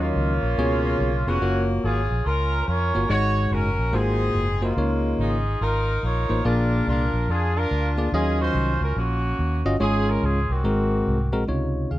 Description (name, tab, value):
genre	uptempo gospel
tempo	143 BPM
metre	4/4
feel	swing 64% on 8ths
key	Db major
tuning	A4 = 440 Hz
part	warm horn section	melody	0.0-11.3 s	Ab3 to Db5	-26 LUFS	equal	none
part	barky tine electric piano	accompaniment	0.0-12.0 s	Ab2 to F5	-24 LUFS	left 1 dB	none
part	vintage muted fingered electric bass	bass	0.0-12.0 s	F1 to F2	-24 LUFS	equal	none
room	light reverb, small room ambience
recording	dark, warm production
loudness	-20 LUFS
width	side -15 dB against mid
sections	0.0-11.5 A section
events	none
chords	0.0 Ebm9; 0.6 Db7; 1.4 Gbmaj7; 3.1 Ab7sus4; 3.9 Ab13; 4.8 Db69; 6.5 Bb7; 8.1 Ebm9; 9.8 Db/Ab; 10.6 Ab9; 11.5 Dbmaj9